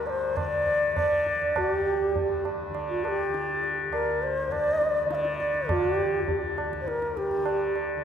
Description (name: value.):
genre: indian classical, Hindustani.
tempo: 101 BPM.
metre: 7/4.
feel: straight.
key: unclear.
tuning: A4 = 442 Hz.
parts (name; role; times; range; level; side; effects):
mellow bansuri; melody; 0.0-7.8 s; F4 to F5; -26 LUFS; equal; none.
tanpura; drone; 0.0-8.0 s; D2 to D3; -32 LUFS; left 2 dB; none.
tabla; percussion; 0.1-8.0 s; none; -32 LUFS; right 3 dB; none.
room: wet church reverb, RT60 3.2 s.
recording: recorded in a church or concert hall.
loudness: -24 LUFS.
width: side -8 dB against mid.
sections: 0.0-8.0 A section.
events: none.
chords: none.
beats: 0.36 0.95 | 1.55 2.14 2.74 3.33 3.92 4.52 5.11 | 5.70 6.29 6.88 7.47.